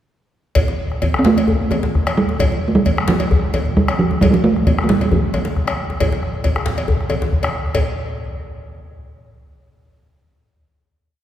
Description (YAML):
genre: west african traditional, West African drum ensemble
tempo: 133 BPM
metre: 4/4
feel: uneven beats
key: F major pentatonic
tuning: A4 = 440 Hz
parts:
  - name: bombo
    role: percussion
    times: 0.6-8.0 s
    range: none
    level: -20 LUFS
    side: left 1 dB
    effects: none
  - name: congas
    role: percussion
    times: 0.6-8.0 s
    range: none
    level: -25 LUFS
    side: right 2 dB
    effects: none
  - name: cowbell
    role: percussion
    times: 0.6-7.9 s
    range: none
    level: -26 LUFS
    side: left 2 dB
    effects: none
  - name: djembe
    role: percussion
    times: 0.6-7.9 s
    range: none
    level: -24 LUFS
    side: left 3 dB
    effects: none
  - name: talking drum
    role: melody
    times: 1.2-7.3 s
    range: F3 to C4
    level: -17 LUFS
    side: right 2 dB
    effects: none
room: wet church reverb, RT60 2.9 s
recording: recorded in a church or concert hall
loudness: -15 LUFS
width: side -11 dB against mid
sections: 0.6-7.8 A section; 7.8-9.5 final hit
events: speeding up 0.6-9.5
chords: none